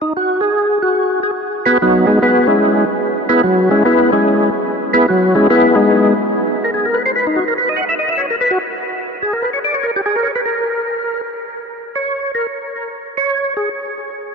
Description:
jazz; 146 BPM; 4/4; swing 67% on 8ths; G# minor; A4 = 440 Hz
percussive tonewheel organ; solo; 0.0-13.7 s; F#3 to F#5; -13 LUFS; equal; slow rotary speaker, overdrive, chorus vibrato, analog delay
wet huge ambient reverb, RT60 4.8 s; dreamy mix soaked in reverb; -13 LUFS; side -5 dB against mid
0.0-14.3 A section
tonewheel organ solo 0.0-14.3
0.0 G#m7; 5.9 G#m; 9.2 N.C.

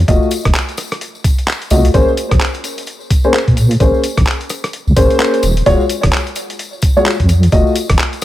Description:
UK garage, two-step garage; 129 BPM; 4/4; swing 60% on 16ths; Bb minor; A4 = 440 Hz
deep soft wobble bass; bass; 0.0-8.0 s; Eb1 to Bb2; -12 LUFS; equal; chorus
dark grand piano; stabs; 0.1-7.7 s; Ab3 to Eb5; -15 LUFS; left 1 dB; tape echo
boom bap sampler-style drum kit; drums; 0.1-8.2 s; handclaps, hi-hat, rim click; -20 LUFS; equal
electronic kick drum; drums; 0.1-8.0 s; -14 LUFS; equal
tambourine; percussion; 0.1-8.2 s; -30 LUFS; left 5 dB
light reverb, studio ambience; -11 LUFS; side -14 dB against mid
0.0-8.2 A section
0.0 F7b9; 1.9 Bbm9; 5.4 Ebm11; 7.3 F7b9

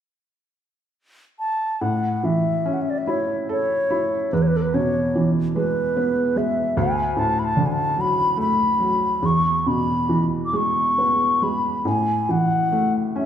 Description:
celtic folk, Celtic slow air; 45-50 BPM (dotted quarters); 6/8; rubato; A major; A4 = 440 Hz
baroque flute; melody; 1.4-13.3 s; A4 to D6; -21 LUFS; left 1 dB
felt-muted upright piano; accompaniment; 1.8-13.3 s; D2 to A4; -22 LUFS; right 1 dB
wet recital hall reverb, RT60 1.5 s; recorded in a church or concert hall; -19 LUFS; side -9 dB against mid
0.0-1.8 A section; 1.8-13.3 B section
0.0 N.C.; 1.8 A; 4.3 E; 6.8 D; 9.2 E; 11.9 A5

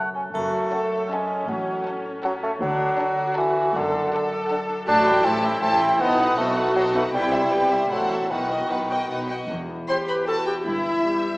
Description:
cinematic, playful, whimsical film cue; 158 BPM; 3/4; straight; F# minor, E minor from 4.9 s; A4 = 445 Hz
warm bassoon; accompaniment; 0.0-9.3 s; D3 to D4; -22 LUFS; equal
concert harp; arpeggios; 0.0-11.4 s; E2 to E5; -32 LUFS; left 1 dB
rich chamber viola section; accompaniment; 0.3-11.4 s; G3 to A4; -28 LUFS; equal
rich chamber double bass section; bass; 0.3-11.0 s; E1 to D2; -37 LUFS; equal
warm chamber cello section; bass; 0.3-11.0 s; D2 to C3; -32 LUFS; right 1 dB
triangle; percussion; 0.3-1.1 s; -51 LUFS; equal
rich chamber violin section; melody; 0.7-11.3 s; D#5 to B5; -31 LUFS; left 1 dB
rich chamber violin section; second line; 0.7-11.4 s; C4 to C6; -30 LUFS; equal
mellow clarinet; second line; 9.9-11.4 s; E4 to C5; -24 LUFS; equal
wet scoring stage reverb, RT60 1.6 s; small speaker sound; -20 LUFS; side -24 dB against mid
0.3-9.5 A section; 9.5-11.4 B section
0.3 F#m; 1.5 F#m/A; 2.6 D; 3.8 D/F#; 4.9 Am7; 6.0 B7b9; 7.1 Cmaj7; 7.9 F#m7b5/A; 8.3 B; 9.5 Em; 10.7 Em/G

